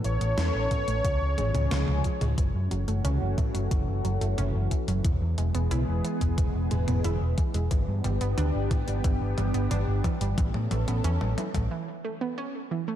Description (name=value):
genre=synthwave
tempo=90 BPM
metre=4/4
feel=straight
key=F# minor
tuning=A4 = 444 Hz
part: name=soft supersaw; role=melody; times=0.0-2.2 s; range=C#5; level=-32 LUFS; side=left 1 dB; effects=cassette tape, digital delay
part: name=lush unison pad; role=sustained chords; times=0.0-11.7 s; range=E3 to A4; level=-33 LUFS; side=equal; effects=chorus, phaser, sidechain pumping
part: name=wide unison pluck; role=arpeggios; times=0.0-13.0 s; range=E3 to E#4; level=-35 LUFS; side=right 4 dB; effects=vintage 12-bit sampler grit, ping-pong delay
part: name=picked electric bass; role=bass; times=0.0-11.7 s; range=E1 to A2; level=-27 LUFS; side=equal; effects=none
part: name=gated 80s digital drum machine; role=drums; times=0.0-11.7 s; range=hi-hat, snare drum, toms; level=-34 LUFS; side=equal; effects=gated reverb, gated reverb snare
part: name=electronic kick drum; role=drums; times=0.7-11.7 s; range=none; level=-27 LUFS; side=equal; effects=none
room=light reverb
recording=dark, warm production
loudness=-24 LUFS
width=side -11 dB against mid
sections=0.0-2.4 A section; 2.4-13.0 B section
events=drum fill 1.4-2.4, 2.4-11.7; break 11.7-13.0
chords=0.0 Aadd9; 1.0 C#; 2.4 F#m7; 5.0 E; 7.7 G6; 10.4 Aadd9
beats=0.38 1.04 1.71 | 2.38 3.04 3.71 4.38 | 5.04 5.71 6.38 7.04 | 7.71 8.38 9.04 9.71 | 10.38 11.04 11.71 12.38